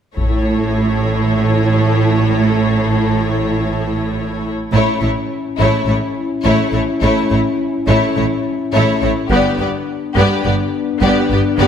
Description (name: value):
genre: cinematic, epic orchestral film score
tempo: 105 BPM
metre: 4/4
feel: straight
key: A mixolydian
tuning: A4 = 438 Hz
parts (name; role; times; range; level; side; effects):
- warm symphonic violin section; second line; 0.2-11.7 s; E4 to C#5; -22 LUFS; left 3 dB; none
- rich symphonic viola section; accompaniment; 0.2-11.7 s; A3 to E4; -21 LUFS; right 1 dB; none
- clear studio double bass section; bass; 0.2-11.7 s; G1 to A1; -20 LUFS; right 3 dB; none
- clear symphonic cello section; bass; 0.2-11.7 s; G2 to A2; -19 LUFS; right 3 dB; none
- taiko ensemble; drums; 0.2-1.3 s; none; -20 LUFS; left 1 dB; none
- clear symphonic violin section; melody; 4.7-11.7 s; C#5 to D5; -22 LUFS; left 5 dB; none
- mellow French horn section; sustained chords; 4.7-11.7 s; B3 to E4; -20 LUFS; left 5 dB; none
room: moderate scoring stage reverb, RT60 1.7 s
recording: none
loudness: -14 LUFS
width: side -8 dB against mid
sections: 0.2-4.7 A section; 4.7-11.7 B section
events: build-up 4.7-11.7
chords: 0.2 A; 9.3 G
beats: | 0.17 0.74 1.31 1.88 | 2.45 3.02 3.60 4.17 | 4.74 5.31 5.88 6.45 | 7.03 7.60 8.17 8.74 | 9.31 9.88 10.45 11.03 | 11.60